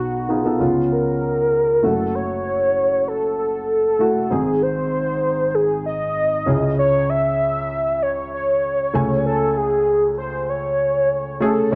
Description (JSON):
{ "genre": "pop", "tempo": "97 BPM", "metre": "4/4", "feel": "straight", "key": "unclear", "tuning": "A4 = 440 Hz", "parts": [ { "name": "warm velvety synth lead", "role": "melody", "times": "0.0-11.8 s", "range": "E#4 to E5", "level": "-22 LUFS", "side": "equal", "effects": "chorus" }, { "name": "dark upright piano", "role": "accompaniment", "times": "0.0-11.8 s", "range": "F#1 to G#5", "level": "-24 LUFS", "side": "equal", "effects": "none" } ], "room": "moderate large studio reverb, RT60 0.9 s, small room ambience", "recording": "dark, warm production", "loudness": "-20 LUFS", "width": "mono", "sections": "0.0-1.8 A section; 1.8-11.7 B section", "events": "none", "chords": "0.0 B; 0.6 C#7; 1.8 F#m7; 4.3 G#; 6.5 C#m; 8.9 Amaj7/C#", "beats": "0.60 1.22 | 1.84 2.45 3.07 3.69 | 4.31 4.92 5.54 6.16 | 6.78 7.39 8.01 8.63 | 9.25 9.86 10.48 11.10 | 11.71" }